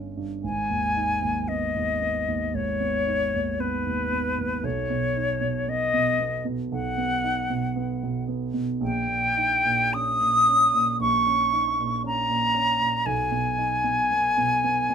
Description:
classical, romantic duo for flute and grand piano; 57 BPM; 4/4; rubato; G# minor; A4 = 443 Hz
dark concert grand piano; accompaniment; 0.0-14.9 s; G1 to D#4; -28 LUFS; right 3 dB
bright concert flute; melody; 0.4-14.9 s; B4 to D#6; -22 LUFS; left 1 dB
light reverb; minimal, uncompressed stereo recording; -22 LUFS; side -7 dB against mid
0.0-14.9 A section
0.4 G#m; 4.6 Badd9; 8.8 D#7/A#; 13.1 G#m/B

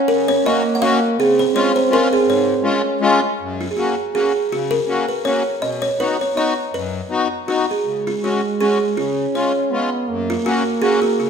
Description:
alpine folk, alpine dance band; 162 BPM; 3/4; swing 54% on 8ths, rubato; Db major, F# major from 3.4 s; A4 = 438 Hz
buzzing kalimba; melody; 0.0-11.3 s; E#4 to Gb5; -19 LUFS; right 1 dB
warm euphonium; second line; 0.0-3.2, 7.8-11.3 s; G#3 to Db4; -20 LUFS; right 2 dB
accordion; accompaniment; 0.1-11.3 s; F#2 to Gb4; -21 LUFS; left 3 dB; light tremolo tuning
wet recital hall reverb, RT60 1.4 s; -16 LUFS; side -6 dB against mid
0.0-3.4 A section; 3.4-11.3 B section
0.0 Gb; 1.2 Db; 3.4 F#; 5.6 B; 7.8 C#sus4; 9.0 C#; 10.1 F#

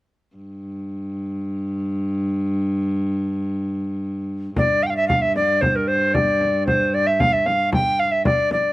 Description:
medieval dance; 114 BPM; 2/4; straight; A4 = 441 Hz
dark viola da gamba; drone; 0.4-8.7 s; G2; -24 LUFS; equal
tenor recorder; melody; 4.6-8.7 s; Bb4 to G5; -18 LUFS; equal
frame drum; percussion; 4.6-8.7 s; -23 LUFS; left 1 dB
little or no reverb; recorded outdoors, with no room sound; -18 LUFS; side -17 dB against mid
0.4-4.6 A section; 4.6-8.7 B section

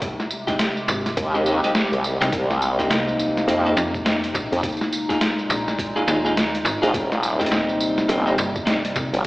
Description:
glitch hop; 104 BPM; 4/4; swing 61% on 16ths; A4 = 440 Hz
warbly tape-like pad; sustained chords; 0.0-9.3 s; Bb2 to G4; -27 LUFS; equal; chorus, built-in reverb, sidechain pumping
boom bap sampler-style drum kit; drums; 0.0-9.3 s; hi-hat, snare drum, tambourine; -25 LUFS; equal; overdrive
electronic kick drum; drums; 0.0-9.1 s; -30 LUFS; equal; overdrive
electric guitar at the edge of break-up; stabs; 0.5-8.8 s; Ab3 to Ab4; -24 LUFS; equal; sidechain pumping, dub echo
slap-like FM bass; bass; 0.9-9.1 s; Eb1 to F2; -25 LUFS; equal
formant-sweep wobble bass; bass; 1.2-9.2 s; Eb1 to F2; -21 LUFS; equal; chorus, tube saturation
moderate plate reverb, RT60 2.0 s; played on a big sound system in a bare room, stone room reverb, AM radio sound; -19 LUFS; side -20 dB against mid
0.0-9.3 A section
0.0 Abmaj7; 2.3 Cm7; 4.6 Bb7sus4; 6.9 Eb6

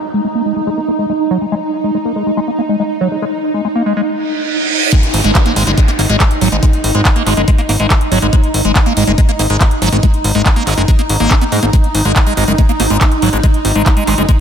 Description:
psychedelic trance; 141 BPM; 4/4; straight; A4 = 440 Hz
swarming drone; sustained chords; 0.0-14.4 s; D#4; -18 LUFS; right 1 dB; built-in reverb, sidechain pumping
downlifter and reverse cymbal; sound effects; 0.0-1.5, 4.3-8.3 s; -20 LUFS; right 3 dB
liquid acid bass; riff; 0.1-14.3 s; F#3 to D#4; -17 LUFS; moving between left 5 dB and right 2 dB; phaser, auto-pan, sidechain pumping, dub echo
drum and bass drum kit; drums; 4.9-14.4 s; handclaps, hi-hat; -18 LUFS; equal
electronic kick drum; drums; 4.9-14.4 s; -11 LUFS; equal
fat analog bass; bass; 5.1-14.3 s; F#1 to G#2; -14 LUFS; equal
light reverb; -11 LUFS; side -8 dB against mid
0.0-4.9 A section; 4.9-14.4 B section
reverse cymbal 4.3-4.9; drop 4.9-14.4
0.0 G#5

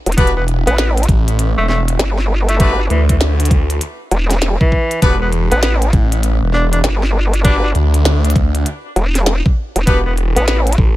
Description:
glitch hop; 99 BPM; 4/4; swing 63% on 16ths; E minor; A4 = 439 Hz
vowel-sweep wobble bass; bass; 0.1-10.8 s; E1 to A1; -14 LUFS; equal; chorus
glitchy drum kit; drums; 0.1-10.8 s; hi-hat, snare drum; -21 LUFS; equal; overdrive
clear tenor saxophone; melody; 0.2-10.6 s; E3 to D4; -21 LUFS; equal; digital delay
brilliant horn section; stabs; 0.2-10.0 s; D4 to B4; -25 LUFS; left 2 dB; sidechain pumping, digital delay
phased detuned saw bass; bass; 0.2-11.0 s; E1 to D2; -14 LUFS; equal; phaser, overdrive
electronic kick drum; drums; 0.2-10.9 s; -13 LUFS; equal; overdrive
digital ambience; -12 LUFS; side -16 dB against mid
0.0-11.0 A section
0.0 Em7

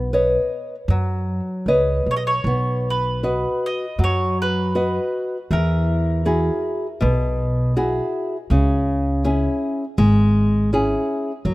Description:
fado-style ballad; 80 BPM; 4/4; rubato; B major; A4 = 440 Hz
nylon-string guitar; accompaniment; 0.0-11.5 s; B2 to D#5; -21 LUFS; left 1 dB
upright bass; bass; 0.0-11.5 s; G#1 to F#2; -21 LUFS; right 1 dB
mandolin; melody; 2.1-8.1 s; A#4 to D#5; -25 LUFS; right 2 dB
light reverb, small room ambience; rough home demo mix; -18 LUFS; side -19 dB against mid
0.0-11.5 A section
0.0 Badd9; 2.5 B; 5.5 Eadd9; 8.5 C#m

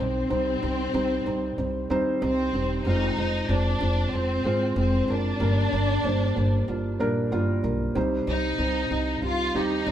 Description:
piano-driven pop; 94 BPM; 4/4; swing 56% on 16ths; C minor; A4 = 440 Hz
warm symphonic violin section; melody; 0.0-9.9 s; C4 to F4; -28 LUFS; left 1 dB
felt-muted upright piano; accompaniment; 0.0-9.9 s; G2 to Eb5; -26 LUFS; right 1 dB
upright bass; bass; 0.0-9.9 s; E1 to Eb2; -27 LUFS; equal
moderate stone room reverb, RT60 1.0 s; band playing live in one room; -23 LUFS; side -10 dB against mid
0.0-9.9 A section
0.0 Cm; 2.9 Fm; 5.4 Gm; 8.0 Cm

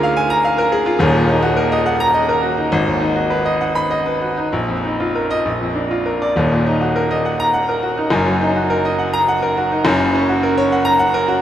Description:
classical, virtuoso piano study; 64-74 BPM (dotted quarters); 6/8; rubato; Eb minor; A4 = 440 Hz
bright concert grand piano; solo; 0.0-11.4 s; Eb1 to Cb6; -14 LUFS; equal
wet huge ambient reverb, RT60 7.2 s; in a vast, echoing space; -14 LUFS; side -11 dB against mid
0.0-6.4 A section; 6.4-11.4 B section
0.0 Bb7/D; 1.0 Ebm; 2.7 Abm7; 4.5 Bbsus4; 5.5 Bb; 6.4 Ebm; 8.1 Ebm/Gb; 9.9 Gb

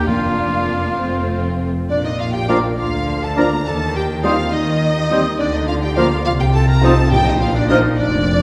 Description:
quick classical-period movement for symphony orchestra; 69 BPM (dotted quarters); 6/8; straight; Bb major; A4 = 440 Hz
rich chamber violin section; melody; 0.0-8.4 s; D5 to Bb5; -26 LUFS; equal
rich chamber violin section; second line; 0.0-8.4 s; C4 to Bb5; -29 LUFS; equal
warm oboe; second line; 0.0-7.8 s; F4 to C5; -28 LUFS; equal
rich chamber viola section; accompaniment; 0.0-7.8 s; F3 to Eb4; -27 LUFS; equal
rich chamber double bass section; bass; 0.0-8.4 s; F1 to Eb2; -24 LUFS; equal
warm chamber cello section; bass; 0.0-8.4 s; F2 to Eb3; -24 LUFS; equal
bright clarinet; second line; 1.9-8.4 s; D4 to Bb4; -26 LUFS; equal
flute section; second line; 2.5-7.8 s; D6 to F6; -29 LUFS; equal
mellow bassoon; accompaniment; 2.5-7.8 s; F3 to G3; -26 LUFS; equal
mellow French horn section; sustained chords; 2.5-7.8 s; Bb3 to F4; -28 LUFS; equal
timpani; percussion; 7.1-8.0 s; Bb2; -26 LUFS; equal
wet scoring stage reverb, RT60 1.9 s; heard from further back in the room; -17 LUFS; mono
0.0-1.9 A section; 1.9-8.4 B section
0.1 Bb/F; 1.0 F; 1.9 Bb; 2.8 Bb/D; 3.7 Cm/Eb; 5.4 Bb/D; 6.3 F5/C; 7.1 Bb

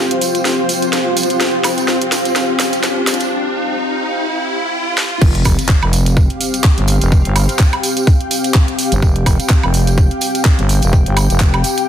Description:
bass house; 126 BPM; 4/4; swing 56% on 16ths; A4 = 440 Hz
sweeping resonant pad; sustained chords; 0.0-11.9 s; C4 to F5; -21 LUFS; left 2 dB; chorus, sidechain pumping
riser and impact; sound effects; 0.1-7.1 s; -22 LUFS; equal
granular cloud pad; texture; 0.0-11.9 s; F4 to G5; -21 LUFS; left 1 dB; built-in reverb, sidechain pumping
garage drum kit; drums; 0.1-11.9 s; crash cymbal, handclaps, hi-hat, snare drum, woodblock; -19 LUFS; right 1 dB; overdrive, high-pass filter on hats, high-pass filter on snare, high-pass filter on perc, high-pass filter on cymbals
tambourine; percussion; 0.2-11.9 s; -26 LUFS; right 6 dB
growling FM bass; bass; 5.2-11.6 s; F1 to G1; -14 LUFS; equal; tube saturation, sidechain pumping
electronic kick drum; drums; 5.2-11.5 s; -11 LUFS; equal; overdrive
light reverb, digital ambience; dense, heavily limited modern master, high-pass filter; -12 LUFS; side -9 dB against mid
0.0-5.2 A section; 5.2-11.9 B section
build-up 0.0-5.2; drum fill 0.0-3.3, 5.0; riser 0.1-5.2; break 3.3-5.2; drop 5.2-11.9; impact 5.2-7.1
0.0 Fsus2

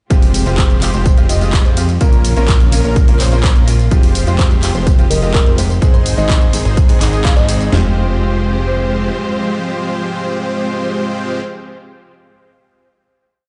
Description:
EDM, festival progressive house; 126 BPM; 4/4; straight; F minor; A4 = 440 Hz
clear concert grand piano; accompaniment; 0.1-11.4 s; Ab2 to Bb4; -26 LUFS; equal; sidechain pumping, tape echo
dark studio string section; sustained chords; 0.1-11.4 s; C3 to C5; -29 LUFS; equal
unison lead; arpeggios; 0.1-11.4 s; Bb4 to Eb5; -28 LUFS; equal; sidechain pumping, tape echo
dense compressed supersaw; riff; 0.1-11.4 s; Ab3 to Eb5; -25 LUFS; equal; sidechain pumping, tape echo
fat analog bass; bass; 0.1-9.1 s; F1 to F2; -18 LUFS; equal; sidechain pumping
big-room dance drum kit; drums; 0.1-7.7 s; handclaps, hi-hat, ride cymbal, tambourine; -25 LUFS; equal
house drum kit; drums; 0.1-7.8 s; kick drum, snare drum, toms; -14 LUFS; equal; overdrive
bell-like FM electric piano; melody; 4.4-7.7 s; Bb4 to F5; -26 LUFS; equal; chorus, tape echo
light reverb, digital ambience; played on a big sound system in a bare room, large studio reverb, nothing above 10.3 kHz; -14 LUFS; mono
0.1-7.7 drop; 7.7-11.5 final chord
drop 0.1-7.7; band accent 7.2
0.1 Fmadd9; 2.0 Bbm; 3.9 Fmadd9; 5.8 Ab; 7.7 Fmadd9

